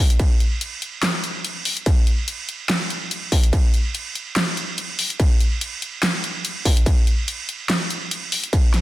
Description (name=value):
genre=dubstep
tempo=144 BPM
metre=4/4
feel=swing 55% on 16ths, half-time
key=none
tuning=none
part: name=dubstep drum kit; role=drums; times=0.1-8.8 s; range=crash cymbal, handclaps, hi-hat, snare drum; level=-23 LUFS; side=equal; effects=studio reverb
part: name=electronic kick drum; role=drums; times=0.2-8.6 s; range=none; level=-16 LUFS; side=equal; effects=distortion, studio reverb
room=light reverb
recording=dense, heavily limited modern master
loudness=-19 LUFS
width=side -16 dB against mid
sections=0.0-8.8 A section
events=none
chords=none